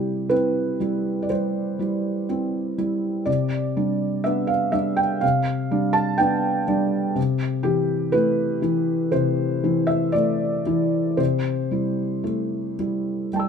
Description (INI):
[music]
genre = neoclassical minimalist piano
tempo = 56-62 BPM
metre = 4/4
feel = rubato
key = C major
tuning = A4 = 440 Hz
[part]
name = felt-muted upright piano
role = solo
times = 0.0-13.5 s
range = C3 to E6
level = -20 LUFS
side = equal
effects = none
[sound]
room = light reverb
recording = minimal, uncompressed stereo recording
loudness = -20 LUFS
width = side -6 dB against mid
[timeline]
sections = 0.0-13.5 A section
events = none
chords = 0.0 C; 3.3 G/C; 7.2 Am/C; 11.2 C6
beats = 0.31 1.31 2.30 | 3.28 4.25 5.23 6.19 | 7.17 8.14 9.13 10.14 | 11.19 12.26 13.34